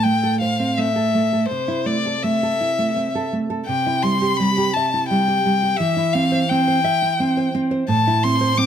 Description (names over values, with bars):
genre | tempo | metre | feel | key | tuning
romantic duo for violin and classical guitar | 85 BPM | 3/4 | rubato | unclear | A4 = 442 Hz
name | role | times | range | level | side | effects
clear violin | melody | 0.0-8.7 s | C5 to D6 | -20 LUFS | left 3 dB | plate reverb
nylon-string guitar | accompaniment | 0.0-8.7 s | A2 to E5 | -20 LUFS | right 2 dB | none
room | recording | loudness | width
moderate studio reverb, RT60 0.8 s | none | -17 LUFS | side -9 dB against mid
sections
0.0-8.7 A section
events
none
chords
0.0 Am; 1.5 Am/C; 3.7 C; 5.8 C/E; 7.9 Am